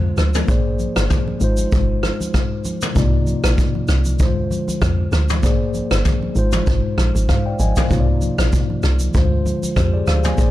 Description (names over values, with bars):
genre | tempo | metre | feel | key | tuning
afrobeats | 97 BPM | 4/4 | swing 55% on 16ths | unclear | A4 = 440 Hz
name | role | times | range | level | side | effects
mellow tine electric piano | accompaniment | 0.0-10.5 s | C3 to Ab5 | -23 LUFS | left 2 dB | fast stereo tremolo
deep log drum bass | bass | 0.0-10.5 s | G1 to Ab2 | -18 LUFS | equal | none
vintage brush drum kit | drums | 0.2-10.5 s | kick drum, rim click, shaker, toms | -20 LUFS | equal | none
congas | percussion | 0.2-10.5 s | none | -28 LUFS | right 3 dB | none
room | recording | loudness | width
small room ambience | dark, warm production | -16 LUFS | side -14 dB against mid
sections
0.0-10.5 A section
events
none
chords
0.5 Bb9; 1.4 Ab6; 3.0 Cm11; 4.2 Dm7b5; 5.4 Bb9; 6.4 Ab6; 7.9 Cm11; 9.1 Dm7b5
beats
| 0.48 1.10 1.72 2.34 | 2.96 3.58 4.20 4.82 | 5.43 6.05 6.67 7.29 | 7.91 8.53 9.14 9.76 | 10.38